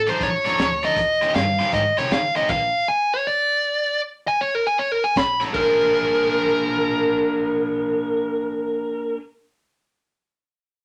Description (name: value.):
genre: electric blues shuffle.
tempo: 157 BPM.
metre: 4/4.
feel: swing 65% on 8ths.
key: Bb mixolydian.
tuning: A4 = 437 Hz.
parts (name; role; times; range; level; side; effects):
dark smooth lead guitar; melody; 0.0-9.1 s; Bb4 to B5; -23 LUFS; equal; overdrive.
upright bass; bass; 0.0-2.7, 5.2-9.2 s; Bb1 to Eb3; -35 LUFS; equal; none.
cranked stack guitar; riff; 0.1-2.5, 5.4-9.2 s; Eb3 to D5; -28 LUFS; equal; overdrive.
crunchy breakbeat drum kit; drums; 0.1-2.6, 5.2-5.7 s; crash cymbal, hi-hat, kick drum, snare drum; -30 LUFS; equal; none.
electric slide guitar; second line; 5.6-9.2 s; Bb4; -27 LUFS; equal; none.
room: moderate studio ambience, RT60 0.5 s.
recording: none.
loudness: -21 LUFS.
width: mono.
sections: 0.0-5.5 A section; 5.5-8.6 B section.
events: none.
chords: 0.0 F6; 1.0 Eb13; 2.5 Bb; 5.2 B9; 5.5 Bb9.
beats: 0.20 0.58 | 0.96 1.34 1.73 2.11 | 2.49 2.87 3.25 3.63 | 4.01 4.40 4.78 5.16 | 5.54 5.92 6.30 6.69 | 7.07 7.45 7.83 8.22.